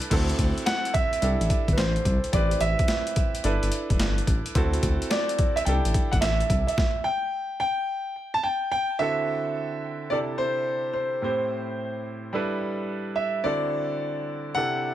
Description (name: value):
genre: R&B, new jack swing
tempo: 108 BPM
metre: 4/4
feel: swing 67% on 16ths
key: unclear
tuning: A4 = 440 Hz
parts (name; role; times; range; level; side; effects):
- clear concert grand piano; accompaniment; 0.0-14.9 s; A2 to C5; -30 LUFS; right 2 dB; none
- boom bap sampler-style drum kit; drums; 0.0-7.0 s; crash cymbal, hi-hat, kick drum, snare drum; -25 LUFS; equal; overdrive
- smooth gliding synth bass; bass; 0.1-6.6 s; E1 to D2; -25 LUFS; equal; none
- warm concert grand piano; melody; 0.7-14.9 s; B4 to A5; -26 LUFS; equal; none
room: small room ambience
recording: none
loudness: -23 LUFS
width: side -12 dB against mid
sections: 0.1-9.0 A section; 9.0-14.9 B section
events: stop 6.8-9.0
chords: 0.1 D9; 1.2 C6; 2.3 Am7; 3.4 G6; 4.6 D9; 5.7 C6; 6.8 N.C.; 9.0 D9; 10.1 C6; 11.2 Am7; 12.3 G6; 13.4 D9